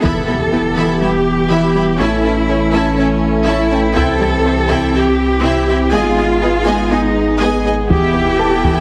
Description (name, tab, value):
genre	cinematic, hybrid orchestral and electronic film score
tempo	122 BPM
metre	4/4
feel	straight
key	unclear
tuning	A4 = 440 Hz
part	warm symphonic violin section	second line	0.0-8.8 s	B4 to B5	-25 LUFS	equal	none
part	rich symphonic viola section	accompaniment	0.0-8.8 s	B3 to G#4	-23 LUFS	equal	none
part	dark French horn section	sustained chords	0.0-8.8 s	E3 to C4	-24 LUFS	equal	none
part	hollow soft pad	sustained chords	0.0-8.8 s	E3 to A4	-22 LUFS	equal	chorus
part	soft round pluck	arpeggios	0.0-8.8 s	C3 to A4	-25 LUFS	equal	chorus, digital delay
part	pure sine sub bass	bass	0.0-8.8 s	E1 to C2	-24 LUFS	equal	none
part	rich studio cello section	bass	0.0-8.8 s	C#4 to A4	-20 LUFS	equal	none
part	solo taiko drums	drums	0.0-1.0, 4.0-4.9, 7.9-8.8 s	none	-23 LUFS	equal	none
part	impact	sound effects	0.0-2.0 s	none	-27 LUFS	equal	none
part	warm baby grand piano	texture	0.0-8.8 s	A4 to A5	-29 LUFS	equal	none
room	wet recital hall reverb, RT60 1.5 s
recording	heavily compressed radio sound, multiband compression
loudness	-14 LUFS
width	mono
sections	0.0-8.8 A section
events	impact 0.0-2.0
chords	0.0 Em; 2.0 A; 4.0 C; 5.9 G#m; 7.9 Em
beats	| 0.03 0.53 1.02 1.51 | 2.00 2.49 2.98 3.48 | 3.97 4.46 4.95 5.44 | 5.93 6.43 6.92 7.41 | 7.90 8.39